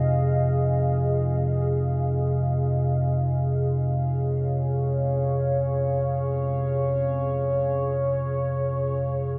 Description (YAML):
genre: dark ambient drone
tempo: free time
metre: none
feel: none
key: unclear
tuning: A4 = 440 Hz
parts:
  - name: dark analog pad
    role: sustained chords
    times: 0.0-9.4 s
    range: Ab4 to F5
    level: -30 LUFS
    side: equal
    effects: chorus, phaser
  - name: deep rumbling drone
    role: drone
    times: 0.0-9.4 s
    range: F2 to C3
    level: -26 LUFS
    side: equal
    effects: built-in reverb, lush chorus
room: wet cathedral reverb, RT60 6.5 s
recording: in a vast, echoing space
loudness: -25 LUFS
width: mono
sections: 0.0-9.4 A section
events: none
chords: 0.0 Db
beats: free time